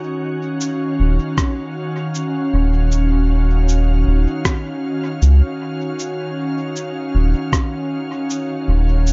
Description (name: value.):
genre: ambient dub.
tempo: 78 BPM.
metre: 4/4.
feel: swing 57% on 16ths.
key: Eb minor.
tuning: A4 = 440 Hz.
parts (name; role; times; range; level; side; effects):
soft additive organ-like pad; sustained chords; 0.0-9.1 s; Eb3 to F5; -24 LUFS; equal; ensemble chorus, built-in reverb.
electronic cabasa and rim click; drums; 0.6-9.1 s; none; -27 LUFS; equal; dub echo.
round analog bass; bass; 1.0-9.1 s; Eb1 to Db2; -16 LUFS; equal; tube saturation.
electronic kick drum; drums; 1.4-7.7 s; none; -22 LUFS; equal; none.
room: light reverb.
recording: echo-heavy mix, nothing above 7.7 kHz.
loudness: -19 LUFS.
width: mono.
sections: 0.0-9.1 A section.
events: none.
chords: 0.0 Ebm9.